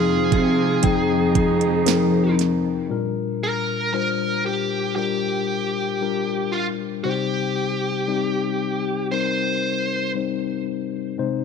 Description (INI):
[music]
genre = pop ballad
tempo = 58 BPM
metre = 4/4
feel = straight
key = unclear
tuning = A4 = 440 Hz
[part]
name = smooth overdriven lead guitar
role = melody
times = 0.0-10.1 s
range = F4 to C5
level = -24 LUFS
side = right 2 dB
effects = none
[part]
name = mellow tine electric piano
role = accompaniment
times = 0.0-11.4 s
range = Bb2 to G5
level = -23 LUFS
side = left 9 dB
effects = medium stereo tremolo
[part]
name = clear brass ensemble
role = sustained chords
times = 0.0-2.9 s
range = Eb3 to F4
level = -28 LUFS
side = right 14 dB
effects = none
[part]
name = rich chamber cello section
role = bass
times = 0.0-2.9 s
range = F2 to C3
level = -24 LUFS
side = right 2 dB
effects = none
[part]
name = smooth R&B drum kit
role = drums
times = 0.3-2.6 s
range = hi-hat, kick drum, snare drum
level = -23 LUFS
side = right 6 dB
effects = none
[sound]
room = light reverb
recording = 1960s-style stereo with parts hard left and right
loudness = -20 LUFS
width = side -6 dB against mid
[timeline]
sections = 0.0-2.9 A section; 2.9-11.4 B section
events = none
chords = 0.0 Fm7; 2.9 Bb6; 7.0 Cm